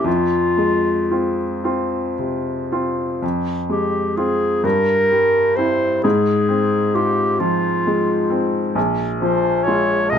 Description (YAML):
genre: classical, romantic duo for clarinet and grand piano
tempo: 37-45 BPM (dotted quarters)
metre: 6/8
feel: rubato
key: F minor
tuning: A4 = 440 Hz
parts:
  - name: clear clarinet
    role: melody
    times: 0.0-10.2 s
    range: F4 to Eb5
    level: -18 LUFS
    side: left 1 dB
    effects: none
  - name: clear baby grand piano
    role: accompaniment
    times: 0.0-10.2 s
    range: Bb1 to F4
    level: -19 LUFS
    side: equal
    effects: none
room: light reverb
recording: close, detailed microphones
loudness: -16 LUFS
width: side -8 dB against mid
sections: 0.0-3.2 A section; 3.2-10.2 B section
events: none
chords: 0.1 Fm; 4.6 C7/G; 6.0 Fm/Ab; 8.8 Bb5